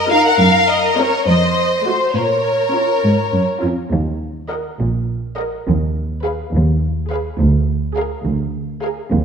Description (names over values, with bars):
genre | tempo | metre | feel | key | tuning
cinematic, playful, whimsical film cue | 69 BPM (dotted quarters) | 6/8 | straight | Bb minor, Eb minor from 3.9 s | A4 = 439 Hz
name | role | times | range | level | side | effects
warm studio violin section | melody | 0.0-9.1 s | Bb4 to Gb5 | -18 LUFS | left 4 dB | none
rich studio violin section | second line | 0.0-9.1 s | Bb4 to Eb5 | -20 LUFS | equal | none
dark studio cello section | bass | 0.0-9.2 s | D2 to Bb2 | -20 LUFS | right 2 dB | none
warm studio viola section | accompaniment | 0.1-9.1 s | A3 to Bb4 | -24 LUFS | right 3 dB | none
dark studio double bass section | bass | 3.9-9.2 s | Bb1 to Eb2 | -19 LUFS | right 2 dB | none
room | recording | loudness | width
moderate scoring stage reverb, RT60 1.5 s | none | -15 LUFS | side -6 dB against mid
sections
0.0-3.9 A section; 3.9-9.2 B section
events
none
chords
0.4 Gbmaj7#11; 1.3 F7b9; 2.2 Bbm; 3.9 Ebm; 5.7 Fm7b5/Eb; 7.4 Bb7/D